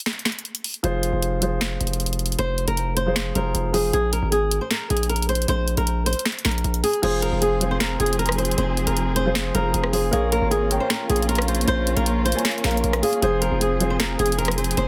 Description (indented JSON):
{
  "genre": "hip hop, trap",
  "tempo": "155 BPM",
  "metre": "4/4",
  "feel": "half-time",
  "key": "F minor",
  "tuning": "A4 = 438 Hz",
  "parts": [
    { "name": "trap drum kit", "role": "drums", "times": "0.0-14.9 s", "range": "crash cymbal, finger snaps, hi-hat, rim click, snare drum", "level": "-28 LUFS", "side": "equal", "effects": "none" },
    { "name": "dark grand piano", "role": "accompaniment", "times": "0.8-4.0, 7.0-14.9 s", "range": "F3 to Ab5", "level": "-30 LUFS", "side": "equal", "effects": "none" },
    { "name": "distorted 808-style bass", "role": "bass", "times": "0.8-14.9 s", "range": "F1 to Bb1", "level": "-27 LUFS", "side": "equal", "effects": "distortion" },
    { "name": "flamenco guitar", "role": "melody", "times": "2.4-14.9 s", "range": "Ab4 to C5", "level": "-26 LUFS", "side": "equal", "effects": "tape echo" },
    { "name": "muted chamber string section", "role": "sustained chords", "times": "7.0-14.9 s", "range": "F3 to Ab4", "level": "-31 LUFS", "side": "equal", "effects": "none" }
  ],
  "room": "small room ambience",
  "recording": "dense, heavily limited modern master",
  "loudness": "-22 LUFS",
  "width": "mono",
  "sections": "0.0-7.0 A section; 7.0-14.9 B section",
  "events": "break 0.0-2.4",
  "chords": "0.0 N.C.; 0.8 Fm; 3.9 Abadd9; 7.0 Fm; 10.1 Bbm; 13.2 Fm",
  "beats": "0.06 0.45 | 0.84 1.22 1.61 2.00 | 2.39 2.77 3.16 3.55 | 3.93 4.32 4.71 5.09 | 5.48 5.87 6.26 6.64 | 7.03 7.42 7.80 8.19 | 8.58 8.97 9.35 9.74 | 10.13 10.52 10.90 11.29 | 11.68 12.06 12.45 12.84 | 13.22 13.61 14.00 14.39 | 14.77"
}